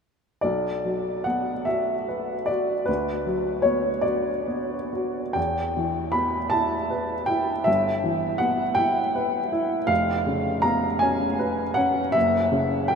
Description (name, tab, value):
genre	classical, romantic nocturne for solo piano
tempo	43-54 BPM (dotted quarters)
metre	6/8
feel	rubato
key	B minor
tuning	A4 = 440 Hz
part	warm upright piano	solo	0.4-13.0 s	E#1 to B5	-22 LUFS	equal	none
room	wet huge ambient reverb, RT60 7.4 s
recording	in a vast, echoing space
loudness	-22 LUFS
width	side -6 dB against mid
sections	0.4-13.0 A section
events	none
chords	0.4 Bm; 2.9 Bm/D; 5.4 Em; 7.7 Em/G; 9.9 C#7/E#; 12.2 F#7(no3)